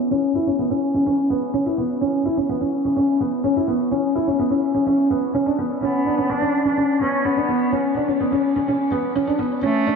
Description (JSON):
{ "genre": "electronica", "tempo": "126 BPM", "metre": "4/4", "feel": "straight", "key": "unclear", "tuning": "A4 = 441 Hz", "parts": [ { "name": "felt-muted upright piano", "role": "riff", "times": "0.0-10.0 s", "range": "B3 to E4", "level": "-18 LUFS", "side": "equal", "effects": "wide subtle chorus, shimmer reverb, ping-pong delay" }, { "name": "rich cello", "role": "melody", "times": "5.8-10.0 s", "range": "A3 to D4", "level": "-24 LUFS", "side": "equal", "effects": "shimmer reverb, ping-pong delay" } ], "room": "wet plate reverb, RT60 2.9 s", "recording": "dreamy mix soaked in reverb, low-pass filter", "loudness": "-18 LUFS", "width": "side -5 dB against mid", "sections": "0.0-10.0 A section", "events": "filter sweep 0.0-10.0", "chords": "0.0 Bsus2; 5.3 Bmadd9" }